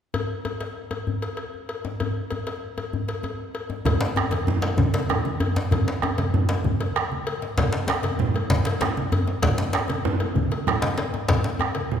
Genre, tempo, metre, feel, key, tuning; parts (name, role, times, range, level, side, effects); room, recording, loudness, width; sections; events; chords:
west african traditional, West African drum ensemble; 129 BPM (dotted quarters); 12/8; straight
cowbell; percussion; 0.1-11.9 s; -31 LUFS; left 4 dB
djembe; percussion; 0.1-11.9 s; -30 LUFS; left 2 dB
bombo; percussion; 3.9-12.0 s; -28 LUFS; right 1 dB
congas; percussion; 3.9-12.0 s; -28 LUFS; right 4 dB
djembe; percussion; 3.9-11.6 s; -25 LUFS; left 1 dB
wet concert hall reverb, RT60 2.2 s; recorded in a church or concert hall; -22 LUFS; side -8 dB against mid
0.1-3.9 A section; 3.9-12.0 B section